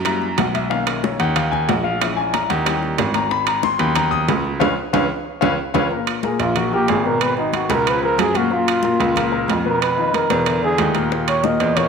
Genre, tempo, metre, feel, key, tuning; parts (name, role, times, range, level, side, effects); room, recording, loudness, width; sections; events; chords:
Afro-Cuban jazz; 184 BPM; 4/4; straight; A4 = 440 Hz
warm grand piano; accompaniment; 0.0-11.9 s; Bb2 to D#6; -22 LUFS; left 8 dB
clear baby grand piano; bass; 0.0-11.9 s; G#1 to F#2; -22 LUFS; right 3 dB
bongos; percussion; 0.1-5.8, 11.1-11.9 s; -29 LUFS; left 7 dB
congas; percussion; 0.1-11.9 s; -30 LUFS; left 9 dB
timbales; percussion; 0.1-11.9 s; -24 LUFS; right 12 dB
breathy trumpet; melody; 6.2-11.9 s; Eb4 to Eb5; -20 LUFS; right 2 dB
wet echo chamber reverb, RT60 1.8 s, small room reverb; 1960s-style stereo with parts hard left and right; -16 LUFS; side -6 dB against mid
0.0-5.9 A section; 5.9-11.9 A section
grand piano solo 0.0-5.9; drum fill 4.6-5.9; band accent 4.6-5.9; trumpet solo 5.9-11.9
0.1 F#7b9; 0.7 Bmaj9; 2.0 A#m7b5; 2.7 D#7b9; 3.3 G#m11; 4.6 C#7; 5.9 Abmadd9; 7.2 Abm7; 7.9 Db; 8.5 Gbmaj7; 9.8 Bmaj7#11; 10.5 E7; 11.1 Eb5